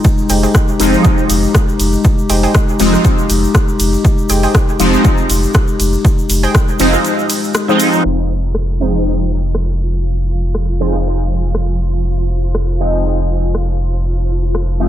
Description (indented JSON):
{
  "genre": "dub techno",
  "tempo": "120 BPM",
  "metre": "4/4",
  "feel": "swing 55% on 16ths",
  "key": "F minor",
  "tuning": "A4 = 440 Hz",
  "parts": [
    { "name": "dark analog pad", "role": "sustained chords", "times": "0.0-14.9 s", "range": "Ab3 to G4", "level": "-20 LUFS", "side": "left 4 dB", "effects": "chorus, sidechain pumping" },
    { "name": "electronic kick drum", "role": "drums", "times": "0.0-6.7 s", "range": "none", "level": "-12 LUFS", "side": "equal", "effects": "overdrive, studio reverb" },
    { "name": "punchy analog drum machine", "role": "drums", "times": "0.0-14.7 s", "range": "hi-hat, ride cymbal, rim click", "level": "-21 LUFS", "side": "equal", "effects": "overdrive, studio reverb" },
    { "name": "egg shaker", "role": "percussion", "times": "0.0-8.0 s", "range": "none", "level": "-25 LUFS", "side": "left 2 dB", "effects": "none" },
    { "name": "warbly dusty pluck", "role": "riff", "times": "0.3-7.8 s", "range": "Ab4 to G5", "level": "-23 LUFS", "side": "right 5 dB", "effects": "chorus, sidechain pumping, dub echo" },
    { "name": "soft dub sub bass", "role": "bass", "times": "0.3-14.9 s", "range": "F1", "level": "-16 LUFS", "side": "equal", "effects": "sidechain pumping" },
    { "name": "resonant sweep polysynth", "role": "stabs", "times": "0.8-14.9 s", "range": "F3 to Eb4", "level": "-16 LUFS", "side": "equal", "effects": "chorus, phaser, sidechain pumping, dub echo" },
    { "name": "bubbling stepped-filter texture", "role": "texture", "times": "8.0-14.9 s", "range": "F3 to F4", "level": "-26 LUFS", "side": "right 1 dB", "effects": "chorus, built-in reverb, sidechain pumping" }
  ],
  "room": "light reverb, digital ambience",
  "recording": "low-pass filter",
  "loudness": "-11 LUFS",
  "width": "side -11 dB against mid",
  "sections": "0.0-8.0 A section; 8.0-14.9 B section",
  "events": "kick drops out 7.0-8.0; filter sweep on analog polysynth 8.0-14.9; filter sweep on analog synth pad 8.0-14.9; filter sweep 8.0-14.9",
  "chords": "0.0 Fm7"
}